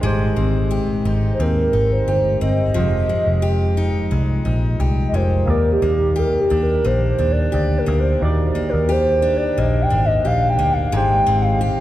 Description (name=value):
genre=indie pop, bedroom pop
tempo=88 BPM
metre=4/4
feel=straight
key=Eb major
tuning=A4 = 445 Hz
part: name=barky tine electric piano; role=accompaniment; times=0.0-11.8 s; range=G3 to Eb5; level=-27 LUFS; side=right 2 dB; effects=overdrive
part: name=picked steel-string acoustic guitar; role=accompaniment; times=0.0-11.8 s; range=F3 to G4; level=-25 LUFS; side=left 3 dB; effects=warbly pitch drift
part: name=vintage muted picked electric bass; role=bass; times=0.0-11.7 s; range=F1 to Eb2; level=-19 LUFS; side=equal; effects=none
part: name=hollow clarinet-like synth lead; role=melody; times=1.3-11.8 s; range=G4 to G5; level=-20 LUFS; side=equal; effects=chorus
room=wet cathedral reverb, RT60 6.3 s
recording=recorded in a church or concert hall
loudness=-16 LUFS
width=side -14 dB against mid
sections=0.0-11.8 A section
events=soft synth lead solo 0.0-11.8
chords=0.0 Abmaj7; 2.8 Fm9; 5.5 Ebmaj7; 10.9 Abmaj7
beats=| 0.03 0.71 1.39 2.07 | 2.76 3.44 4.12 4.80 | 5.48 6.17 6.85 7.53 | 8.21 8.89 9.57 10.26 | 10.94 11.62